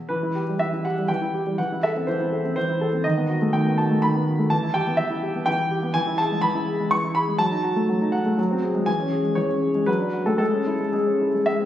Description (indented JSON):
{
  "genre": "classical-period piano sonatina",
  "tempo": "122 BPM",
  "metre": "3/4",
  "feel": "rubato",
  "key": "E minor, C# minor from 6.0 s",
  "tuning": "A4 = 436 Hz",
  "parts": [
    { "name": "warm grand piano", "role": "solo", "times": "0.1-11.7 s", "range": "D#3 to C#6", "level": "-20 LUFS", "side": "equal", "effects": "none" }
  ],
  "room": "wet recital hall reverb, RT60 1.8 s",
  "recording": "recorded on a phone in the room, studio reverb",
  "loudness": "-20 LUFS",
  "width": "side -12 dB against mid",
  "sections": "0.1-11.7 A section",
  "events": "none",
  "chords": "0.1 Em; 1.6 Am/E; 3.1 B7/D#; 4.5 Em; 6.0 E; 7.4 D#dim/F#; 8.4 G#7/F#; 8.9 C#m/E; 9.9 D/F#; 10.4 C#m/G#",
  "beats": "| 0.10 0.60 1.09 | 1.58 2.07 2.56 | 3.05 3.54 4.03 | 4.51 4.99 5.47 | 5.95 6.43 6.92 | 7.40 7.89 8.38 | 8.88 9.38 9.88 | 10.40 10.94 11.46"
}